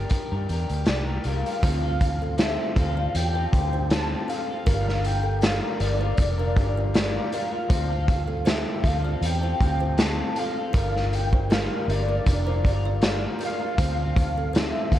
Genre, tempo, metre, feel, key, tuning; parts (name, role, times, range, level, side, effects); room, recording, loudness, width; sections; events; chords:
indie pop, bedroom pop; 79 BPM; 4/4; swing 55% on 16ths; D minor; A4 = 441 Hz
soft octave-layered synth lead; melody; 0.0-15.0 s; D5 to A5; -30 LUFS; equal; ensemble chorus
electric guitar through a small old amp; accompaniment; 0.0-15.0 s; D3 to Bb4; -32 LUFS; left 5 dB; lush chorus, vibrato effect
vintage muted fingered electric bass; bass; 0.0-15.0 s; F1 to G2; -26 LUFS; equal
raw garage drum kit; drums; 0.1-15.0 s; hi-hat, kick drum, snare drum; -25 LUFS; equal
kalimba; second line; 1.6-14.7 s; C4 to D5; -35 LUFS; right 5 dB; wide subtle chorus, tape echo
light reverb, small room ambience; cassette tape; -22 LUFS; side -12 dB against mid
0.0-1.6 A section; 1.6-15.0 B section
0.0 Gm; 1.6 Dm7; 4.7 Gm7; 7.7 Dm7; 10.7 Gm7; 13.8 Dm7